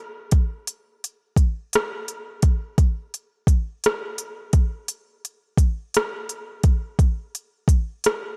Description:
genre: R&B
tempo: 57 BPM (dotted quarters)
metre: 6/8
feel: straight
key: none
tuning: none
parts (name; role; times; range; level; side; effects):
- smooth R&B drum kit; drums; 0.3-8.2 s; hi-hat, kick drum, rim click; -22 LUFS; equal; overdrive
room: light reverb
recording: dry, gritty hardware recording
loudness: -23 LUFS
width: mono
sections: 0.0-8.4 A section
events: none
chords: none

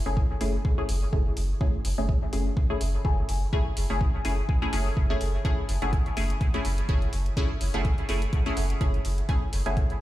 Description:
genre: dub techno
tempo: 125 BPM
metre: 4/4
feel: swing 55% on 16ths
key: F# minor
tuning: A4 = 441 Hz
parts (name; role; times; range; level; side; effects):
- filtered dub chord stab; stabs; 0.1-9.9 s; A3 to G#4; -31 LUFS; left 1 dB; chorus, phaser, sidechain pumping, dub echo
- soft dub sub bass; bass; 0.1-9.8 s; F#1; -27 LUFS; equal; tube saturation, sidechain pumping
- electronic kick drum; drums; 0.2-9.9 s; none; -24 LUFS; equal; none
- electronic hi-hat; drums; 0.4-10.0 s; none; -40 LUFS; equal; none
- filtered dub chord stab; riff; 5.8-9.8 s; A4 to G#5; -41 LUFS; right 3 dB; chorus, sidechain pumping, dub echo
room: digital ambience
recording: played on a big sound system in a bare room, large studio reverb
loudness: -24 LUFS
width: side -15 dB against mid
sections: 0.0-10.0 A section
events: none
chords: 0.0 F#m9

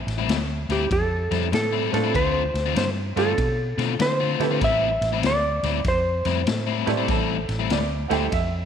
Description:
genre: electric blues shuffle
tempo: 97 BPM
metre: 4/4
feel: swing 66% on 8ths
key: A minor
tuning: A4 = 439 Hz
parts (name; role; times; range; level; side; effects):
- vintage muted fingered electric bass; bass; 0.0-8.7 s; A1 to D3; -26 LUFS; right 1 dB; none
- swinging big-band drum kit; drums; 0.1-8.5 s; kick drum, ride cymbal, snare drum; -28 LUFS; left 2 dB; none
- biting overdriven guitar; riff; 0.2-8.2 s; A2 to F4; -27 LUFS; left 13 dB; spring reverb
- clean lap steel guitar; melody; 0.7-6.8 s; G4 to E5; -24 LUFS; right 1 dB; slapback echo
- bright upright piano; accompaniment; 1.9-8.3 s; A3 to A4; -29 LUFS; right 13 dB; none
- warm upright piano; second line; 6.9-8.7 s; A4 to G5; -29 LUFS; right 10 dB; none
room: light reverb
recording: 1960s-style stereo with parts hard left and right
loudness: -20 LUFS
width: side -8 dB against mid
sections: 0.0-8.7 A section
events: none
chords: 0.0 Am7; 2.1 Dm7; 4.6 Am7

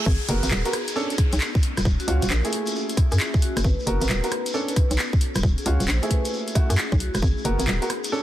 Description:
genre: UK garage, two-step garage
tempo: 134 BPM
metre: 4/4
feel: swing 65% on 16ths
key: unclear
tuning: A4 = 440 Hz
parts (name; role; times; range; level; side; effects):
- bright baby grand piano; stabs; 0.0-8.2 s; A3 to A#4; -28 LUFS; right 2 dB; digital delay
- reverse cymbal and downlifter; sound effects; 0.0-3.6 s; none; -34 LUFS; right 2 dB; none
- vibraphone with medium mallets; melody; 0.1-8.1 s; F#4 to B#4; -34 LUFS; left 1 dB; digital delay
- ethereal airy pad; sustained chords; 0.6-8.2 s; C#4 to F#4; -34 LUFS; left 2 dB; ensemble chorus, built-in reverb, sidechain pumping
- hollow knocking FM bass; bass; 0.1-7.8 s; D#1 to F#2; -22 LUFS; equal; none
- electronic kick drum; drums; 0.1-7.3 s; none; -20 LUFS; equal; none
- shekere; percussion; 0.1-8.2 s; none; -36 LUFS; left 1 dB; none
- punchy analog drum machine; drums; 0.3-8.1 s; handclaps, hi-hat, rim click; -28 LUFS; left 1 dB; none
room: small room ambience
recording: dense, heavily limited modern master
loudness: -20 LUFS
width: side -13 dB against mid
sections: 0.1-8.2 A section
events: drop 0.1-8.2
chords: 0.1 G#m9; 1.0 Bm9 (rootless); 1.6 D#m9; 2.5 F#m9 (rootless); 3.6 G#m9; 4.5 Bm9; 5.2 D#m9; 6.1 F#m9; 7.2 G#m9

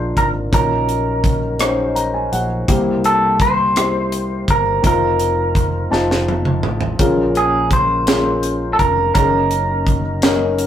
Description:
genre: slow gospel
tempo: 56 BPM (dotted quarters)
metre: 6/8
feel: straight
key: Bb minor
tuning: A4 = 441 Hz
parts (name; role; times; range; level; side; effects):
- clean electric guitar; melody; 0.0-10.7 s; Ab4 to C5; -18 LUFS; right 1 dB; none
- dark concert grand piano; accompaniment; 0.0-10.7 s; Bb2 to Bb5; -20 LUFS; left 3 dB; none
- mellow French horn section; sustained chords; 0.0-10.7 s; F3 to F4; -30 LUFS; equal; none
- fingered electric bass; bass; 0.0-10.7 s; F1 to C2; -23 LUFS; equal; none
- tight funk drum kit; drums; 0.2-10.7 s; hi-hat, kick drum, rim click, snare drum, toms; -19 LUFS; right 1 dB; none
room: moderate studio reverb, RT60 0.5 s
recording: rough rehearsal-room recording, tube saturation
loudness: -14 LUFS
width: side -10 dB against mid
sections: 0.0-10.7 A section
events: grand piano fill 1.6-2.7; drum fill 5.9-7.0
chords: 0.0 Bb7; 0.5 Ebm7/Bb; 2.7 C7; 4.8 F7sus4; 5.9 F7; 7.0 Bbm7; 9.1 Gb6

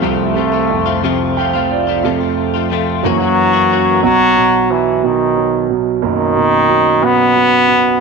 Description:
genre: six-eight pop ballad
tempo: 60 BPM (dotted quarters)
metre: 6/8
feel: straight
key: B major from 4.0 s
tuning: A4 = 440 Hz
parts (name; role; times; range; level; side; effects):
- brilliant trombone; melody; 0.0-8.0 s; D#3 to B3; -13 LUFS; left 2 dB; none
- warm concert grand piano; accompaniment; 0.0-8.0 s; F#1 to G5; -16 LUFS; right 10 dB; none
- direct-recorded clean electric guitar; arpeggios; 0.0-4.1 s; F2 to Gb4; -19 LUFS; left 14 dB; analog chorus
room: moderate plate reverb, RT60 2.6 s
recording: 1960s-style stereo with parts hard left and right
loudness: -11 LUFS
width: side -4 dB against mid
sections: 0.0-2.0 A section; 2.0-4.0 B section; 4.0-8.0 C section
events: grand piano fill 1.0-2.0; grand piano solo 2.0-4.0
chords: 0.0 F; 3.0 Gb7; 4.0 B

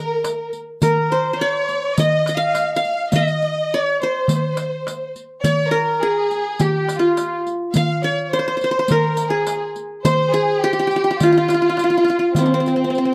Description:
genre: Arabic maqam ensemble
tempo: 104 BPM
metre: 4/4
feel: straight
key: C maqam bayati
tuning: A4 = 437 Hz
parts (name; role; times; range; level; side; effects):
- qanun; melody; 0.0-13.1 s; C4 to F5; -21 LUFS; equal; none
- rich chamber violin section; second line; 0.0-13.1 s; C4 to F5; -25 LUFS; equal; none
- darbuka; percussion; 0.2-13.0 s; none; -25 LUFS; equal; none
- riq; percussion; 0.2-13.0 s; none; -31 LUFS; equal; none
room: light reverb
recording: dry, close 1970s-style studio recording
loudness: -19 LUFS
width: mono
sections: 0.0-13.1 A section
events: none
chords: none

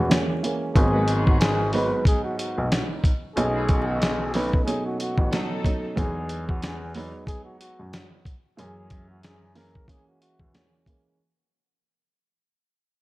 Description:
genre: hip hop, boom-bap hip-hop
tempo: 92 BPM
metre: 4/4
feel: swing 57% on 16ths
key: unclear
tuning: A4 = 441 Hz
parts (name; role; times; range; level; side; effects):
- trumpet with bucket mute; melody; 0.0-10.7 s; F#4 to B4; -30 LUFS; left 1 dB; high-pass filter, low-pass filter
- dark upright piano; accompaniment; 0.0-11.2 s; G#2 to D#4; -29 LUFS; right 2 dB; cassette tape, high-pass filter, low-pass filter
- dark grand piano; bass; 0.0-10.5 s; G#1 to F#2; -27 LUFS; equal; none
- dusty soul sampler-style drum kit; drums; 0.1-11.0 s; hi-hat, kick drum, snare drum; -23 LUFS; equal; none
- warm studio string section; stabs; 0.9-5.6 s; D#3 to B4; -33 LUFS; left 2 dB; high-pass filter, low-pass filter, tape echo
room: small room ambience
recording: vinyl crackle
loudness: -21 LUFS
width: side -19 dB against mid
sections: 0.0-11.2 A section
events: break 0.0-0.8; fade-out 0.0-11.2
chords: 0.0 F#7; 0.8 G#m7; 3.4 B7; 6.0 Emaj7; 8.6 F#7

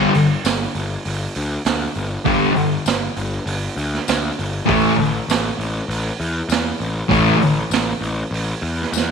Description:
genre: garage rock duo or trio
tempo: 99 BPM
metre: 4/4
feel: straight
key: unclear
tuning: A4 = 440 Hz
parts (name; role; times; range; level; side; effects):
- thick fuzz guitar; riff; 0.0-7.4 s; G2 to A3; -17 LUFS; left 1 dB; distortion
- fuzz picked electric bass; bass; 0.0-9.1 s; G1 to E2; -23 LUFS; left 1 dB; overdrive
- raw garage drum kit; drums; 0.1-9.1 s; hi-hat, kick drum, snare drum; -23 LUFS; right 6 dB; none
- tambourine; percussion; 0.4-9.1 s; none; -32 LUFS; left 13 dB; none
room: moderate echo chamber reverb, RT60 1.9 s, small room ambience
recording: 1960s-style stereo with parts hard left and right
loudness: -17 LUFS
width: side -6 dB against mid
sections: 0.0-9.1 A section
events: drum fill 8.9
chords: 0.0 G5; 4.7 A5

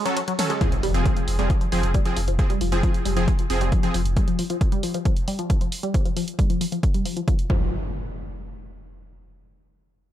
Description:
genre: driving peak-time techno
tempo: 135 BPM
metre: 4/4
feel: straight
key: F minor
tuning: A4 = 440 Hz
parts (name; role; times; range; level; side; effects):
- tight sequenced synth; riff; 0.0-7.7 s; F3 to Ab3; -27 LUFS; left 2 dB; chorus, phaser, sidechain pumping, ping-pong delay
- supersaw stab; stabs; 0.1-4.0 s; F3 to A4; -28 LUFS; right 2 dB; sidechain pumping, dub echo
- punchy analog drum machine; drums; 0.1-7.5 s; hi-hat, ride cymbal, toms; -33 LUFS; equal; overdrive, sidechain pumping on hats, sidechain pumping on cymbals, sidechain pumping on toms
- electronic kick drum; drums; 0.6-7.6 s; none; -21 LUFS; equal; overdrive
- impact; sound effects; 0.6-2.4, 7.5-9.3 s; none; -32 LUFS; equal; none
- saturated sub bass; bass; 0.8-4.2 s; F1; -24 LUFS; equal; sidechain pumping, low-pass filter
room: digital ambience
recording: none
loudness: -20 LUFS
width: side -12 dB against mid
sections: 0.6-7.7 A section; 7.7-9.5 B section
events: break 0.0-0.6; impact 0.6-2.4; filter sweep on synth arpeggio sound 0.6-7.7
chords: 0.0 Gbm; 0.6 Fm; 7.5 N.C.

